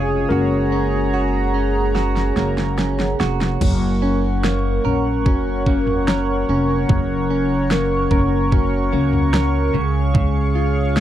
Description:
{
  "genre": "pop ballad",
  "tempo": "73 BPM",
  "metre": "4/4",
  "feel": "straight",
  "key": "F# major",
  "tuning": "A4 = 441 Hz",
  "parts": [
    { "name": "tine electric piano", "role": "accompaniment", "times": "0.0-11.0 s", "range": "C#3 to C#5", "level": "-22 LUFS", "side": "left 5 dB", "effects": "medium stereo tremolo" },
    { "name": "chorused pulse-width pad", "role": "sustained chords", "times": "0.0-11.0 s", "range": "G#4 to D#6", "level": "-24 LUFS", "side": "right 1 dB", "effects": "none" },
    { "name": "direct-recorded clean electric guitar", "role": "arpeggios", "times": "0.0-11.0 s", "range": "F#2 to A#4", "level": "-25 LUFS", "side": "right 13 dB", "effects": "none" },
    { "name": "upright bass", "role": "bass", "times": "0.0-11.0 s", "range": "E#1 to C#2", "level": "-21 LUFS", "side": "equal", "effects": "none" },
    { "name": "pop drum kit", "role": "drums", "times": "2.0-11.0 s", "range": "crash cymbal, kick drum, snare drum, toms", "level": "-20 LUFS", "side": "equal", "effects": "overdrive" }
  ],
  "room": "little or no reverb",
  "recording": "dry, close 1970s-style studio recording",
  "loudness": "-16 LUFS",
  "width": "side -11 dB against mid",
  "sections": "0.0-3.6 A section; 3.6-11.0 B section",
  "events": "tine electric piano solo 0.0-3.6; drum fill 1.9-3.6",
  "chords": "0.3 F#add9; 3.6 F#; 9.7 C#",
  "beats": "| 0.31 1.13 1.95 2.78 | 3.61 4.44 5.26 6.08 | 6.90 7.71 8.53 9.34 | 10.15 10.96"
}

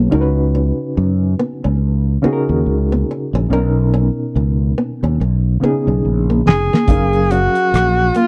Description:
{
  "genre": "R&B, neo-soul",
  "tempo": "71 BPM",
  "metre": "4/4",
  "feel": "swing 59% on 16ths",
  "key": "unclear",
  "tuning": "A4 = 440 Hz",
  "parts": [
    { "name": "nylon-string guitar", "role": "second line", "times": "0.0-8.3 s", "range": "A#3 to D#4", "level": "-23 LUFS", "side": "equal", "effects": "none" },
    { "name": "reed electric piano", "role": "accompaniment", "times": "0.0-8.3 s", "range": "B2 to E#5", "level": "-22 LUFS", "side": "equal", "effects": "fast tremolo" },
    { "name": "fretless electric bass", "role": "bass", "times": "0.0-8.1 s", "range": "E#1 to F#2", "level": "-18 LUFS", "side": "equal", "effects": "analog chorus" },
    { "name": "breathy tenor saxophone", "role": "melody", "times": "6.5-8.3 s", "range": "E#4 to G#4", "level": "-18 LUFS", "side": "equal", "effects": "slapback echo" },
    { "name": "cloth-damped thuddy drum kit", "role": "drums", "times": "6.5-8.3 s", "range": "hi-hat, kick drum, rim click, snare drum", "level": "-16 LUFS", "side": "equal", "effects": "none" }
  ],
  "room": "little or no reverb",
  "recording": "dry, close 1970s-style studio recording",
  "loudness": "-16 LUFS",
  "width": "mono",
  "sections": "0.0-8.3 A section",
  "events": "drum fill 5.2-6.9",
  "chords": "0.1 C#7sus4; 3.5 Bmaj9; 6.9 F#maj7",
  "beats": "| 0.12 0.96 1.81 2.65 | 3.50 4.34 5.19 6.03 | 6.88 7.72"
}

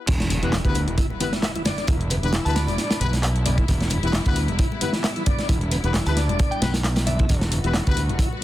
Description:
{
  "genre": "breakbeat, breaks",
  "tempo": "133 BPM",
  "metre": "4/4",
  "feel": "swing 55% on 16ths",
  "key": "E minor",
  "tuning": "A4 = 439 Hz",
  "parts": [
    { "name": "muted studio string section", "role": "sustained chords", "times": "0.1-8.4 s", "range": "G3 to F#4", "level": "-34 LUFS", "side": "left 1 dB", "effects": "sidechain pumping" },
    { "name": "fuzz fingered electric bass", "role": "bass", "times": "0.1-8.2 s", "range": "E1 to D2", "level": "-24 LUFS", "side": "equal", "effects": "overdrive" },
    { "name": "crunchy breakbeat drum kit", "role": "drums", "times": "0.1-8.3 s", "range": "crash cymbal, hi-hat, kick drum, snare drum", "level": "-23 LUFS", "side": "equal", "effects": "none" },
    { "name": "house drum kit", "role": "drums", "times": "0.1-8.3 s", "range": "handclaps, hi-hat", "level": "-31 LUFS", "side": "left 1 dB", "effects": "none" },
    { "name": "impact", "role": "sound effects", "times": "0.1-1.9 s", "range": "none", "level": "-32 LUFS", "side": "equal", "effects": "none" },
    { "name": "congas", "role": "percussion", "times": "0.3-8.4 s", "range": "none", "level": "-32 LUFS", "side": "left 3 dB", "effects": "none" },
    { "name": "tonewheel organ", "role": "riff", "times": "0.4-8.3 s", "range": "D3 to E4", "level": "-31 LUFS", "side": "equal", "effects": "fast rotary speaker, ping-pong delay" },
    { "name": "warm horn section", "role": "stabs", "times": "0.4-8.0 s", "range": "B3 to B4", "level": "-31 LUFS", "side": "left 5 dB", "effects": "ping-pong delay" },
    { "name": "glassy synth bell", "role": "melody", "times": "2.5-2.9, 6.1-7.4 s", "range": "E5 to B5", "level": "-33 LUFS", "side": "equal", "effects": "chorus, phaser, small speaker sound, vintage 12-bit sampler grit, ping-pong delay" }
  ],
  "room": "small room ambience",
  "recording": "dense, heavily limited modern master",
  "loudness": "-19 LUFS",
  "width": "side -14 dB against mid",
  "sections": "0.1-8.4 A section",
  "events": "drop 0.1-8.4; impact 0.1-1.9",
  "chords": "0.1 Em",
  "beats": "| 0.08 0.53 0.98 1.43 | 1.88 2.33 2.79 3.24 | 3.69 4.14 4.59 5.04 | 5.49 5.94 6.39 6.84 | 7.30 7.75 8.20"
}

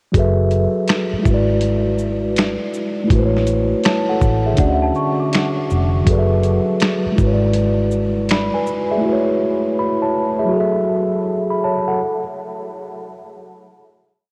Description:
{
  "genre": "lo-fi hip hop",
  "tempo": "81 BPM",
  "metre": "4/4",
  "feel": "swing 63% on 16ths",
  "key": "F# minor",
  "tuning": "A4 = 440 Hz",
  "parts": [
    { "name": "mellow tine electric piano", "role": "accompaniment", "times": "0.1-12.2 s", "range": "D3 to B5", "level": "-20 LUFS", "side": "equal", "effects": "cassette tape" },
    { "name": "vintage muted fingered electric bass", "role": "bass", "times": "0.1-8.5 s", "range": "E#1 to D2", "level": "-22 LUFS", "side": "equal", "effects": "none" },
    { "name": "dusty soul sampler-style drum kit", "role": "drums", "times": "0.1-8.9 s", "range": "finger snaps, hi-hat, kick drum, shaker, snare drum", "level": "-22 LUFS", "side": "equal", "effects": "none" },
    { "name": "large celesta", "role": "second line", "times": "4.6-6.0 s", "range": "D5 to D6", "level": "-30 LUFS", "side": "equal", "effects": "lush chorus, diffuse ambient delay" }
  ],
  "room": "moderate huge ambient reverb, RT60 8.2 s",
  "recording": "dreamy mix soaked in reverb, cassette tape",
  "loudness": "-18 LUFS",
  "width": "mono",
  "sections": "0.1-12.0 A section",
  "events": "none",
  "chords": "0.1 F#m11; 1.3 E7/G#; 3.1 A69; 4.6 Dmaj9; 6.1 F#m11; 7.2 E7/G#; 9.0 A69",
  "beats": "| 0.14 0.88 1.62 2.37 | 3.11 3.85 4.59 5.33 | 6.07 6.81 7.55 8.29 | 9.03 9.77 10.51 11.25"
}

